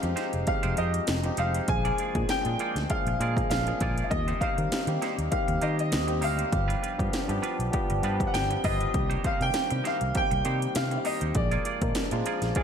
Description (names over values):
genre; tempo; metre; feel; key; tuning
polished 1980s jazz-funk pop; 99 BPM; 4/4; swing 54% on 16ths; Eb major; A4 = 438 Hz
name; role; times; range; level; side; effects
clear baby grand piano; melody; 0.0-12.6 s; D5 to Ab5; -31 LUFS; equal; wide subtle chorus
barky tine electric piano; accompaniment; 0.0-12.6 s; Eb3 to Bb4; -32 LUFS; left 2 dB; overdrive, wide subtle chorus
semi-hollow electric guitar; riff; 0.0-12.6 s; G3 to D5; -37 LUFS; right 6 dB; lush chorus
fingered electric bass; bass; 0.0-12.5 s; F1 to Eb3; -29 LUFS; equal; none
house drum kit; drums; 0.0-12.6 s; hi-hat, kick drum, snare drum; -31 LUFS; equal; overdrive
room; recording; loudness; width
moderate plate reverb, RT60 2.7 s; bright 1980s-style digital production; -25 LUFS; side -7 dB against mid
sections
0.0-12.6 A section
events
none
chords
0.0 Fm9; 1.7 Bb7; 4.1 Eb6; 6.5 G7; 8.9 Cm7; 11.4 Bb7